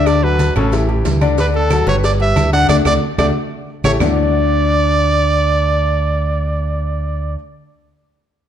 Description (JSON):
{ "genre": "latin, salsa", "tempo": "183 BPM", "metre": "4/4", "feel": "straight", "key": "D major", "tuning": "A4 = 440 Hz", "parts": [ { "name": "clear trumpet", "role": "melody", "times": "0.0-7.4 s", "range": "A4 to F#5", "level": "-18 LUFS", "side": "right 3 dB", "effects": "none" }, { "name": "bright grand piano", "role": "accompaniment", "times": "0.0-7.4 s", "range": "C#3 to D5", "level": "-20 LUFS", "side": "left 6 dB", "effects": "none" }, { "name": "fingered electric bass", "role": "bass", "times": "0.0-7.3 s", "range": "G1 to D2", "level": "-17 LUFS", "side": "right 1 dB", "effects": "none" }, { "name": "agogo bells and timbales", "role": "percussion", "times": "0.1-4.1 s", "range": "none", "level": "-27 LUFS", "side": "right 6 dB", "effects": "none" }, { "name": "claves", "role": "percussion", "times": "0.1-4.1 s", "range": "none", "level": "-31 LUFS", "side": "right 7 dB", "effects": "none" }, { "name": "congas", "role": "percussion", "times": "0.1-4.1 s", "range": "none", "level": "-23 LUFS", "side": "left 2 dB", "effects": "none" }, { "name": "cowbell and bongos", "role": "percussion", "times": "0.1-4.1 s", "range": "none", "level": "-27 LUFS", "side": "left 4 dB", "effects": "none" }, { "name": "maracas", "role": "percussion", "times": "0.1-4.1 s", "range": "none", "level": "-34 LUFS", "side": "right 4 dB", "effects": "none" } ], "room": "moderate large studio reverb, RT60 1.4 s", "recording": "dark, warm production", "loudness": "-13 LUFS", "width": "side -9 dB against mid", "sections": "0.0-4.0 A section; 4.0-6.6 B section", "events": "drum fill 2.7-4.0; band accent 2.7-4.0", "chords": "0.1 D; 0.7 A5; 1.4 D; 2.0 G; 2.7 D; 3.4 A7(no3); 4.0 D" }